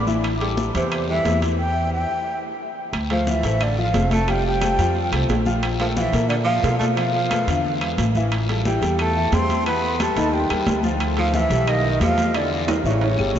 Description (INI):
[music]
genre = Afro-Cuban jazz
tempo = 178 BPM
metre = 4/4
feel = straight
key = D minor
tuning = A4 = 440 Hz
[part]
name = breathy mellow concert flute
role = melody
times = 0.0-13.4 s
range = C5 to C6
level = -24 LUFS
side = equal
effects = analog delay
[part]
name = breathy tenor saxophone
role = second line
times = 0.0-13.4 s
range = C3 to C4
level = -27 LUFS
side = right 3 dB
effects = none
[part]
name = upright bass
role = bass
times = 0.0-13.4 s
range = F1 to B2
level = -23 LUFS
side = equal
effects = none
[part]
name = warm baby grand piano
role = accompaniment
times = 0.1-13.4 s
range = D3 to F5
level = -26 LUFS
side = left 3 dB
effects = lush chorus
[part]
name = congas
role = percussion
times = 0.1-13.4 s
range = none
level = -29 LUFS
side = left 1 dB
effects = none
[part]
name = guiro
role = percussion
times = 0.1-13.4 s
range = none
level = -36 LUFS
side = left 5 dB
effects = none
[part]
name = claves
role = percussion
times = 0.2-13.4 s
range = none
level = -38 LUFS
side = left 6 dB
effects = none
[part]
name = timbales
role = percussion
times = 0.2-13.1 s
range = none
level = -30 LUFS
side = right 6 dB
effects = none
[sound]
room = wet huge ambient reverb, RT60 7.5 s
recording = dreamy mix soaked in reverb, nothing above 7.8 kHz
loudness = -18 LUFS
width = side -9 dB against mid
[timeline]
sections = 0.0-2.9 A section; 2.9-13.4 B section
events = stop 1.6-2.9; drum fill 12.7-13.4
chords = 0.2 Am7; 1.6 Em; 2.3 N.C.; 2.9 Dm7; 4.3 Fadd9; 5.6 Bb5; 7.0 Bm7b5; 7.6 E7b9; 8.3 Am7; 9.7 Em; 10.3 Ebadd9; 11.0 Dm9; 11.7 Baug7; 12.3 Em7b5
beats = | 0.24 0.58 0.92 1.25 | 1.59 1.93 2.26 2.60 | 2.94 3.27 3.61 3.95 | 4.28 4.62 4.96 5.29 | 5.63 5.96 6.30 6.64 | 6.97 7.31 7.65 7.98 | 8.32 8.65 8.99 9.33 | 9.66 10.00 10.33 10.67 | 11.00 11.34 11.68 12.01 | 12.35 12.68 13.02 13.35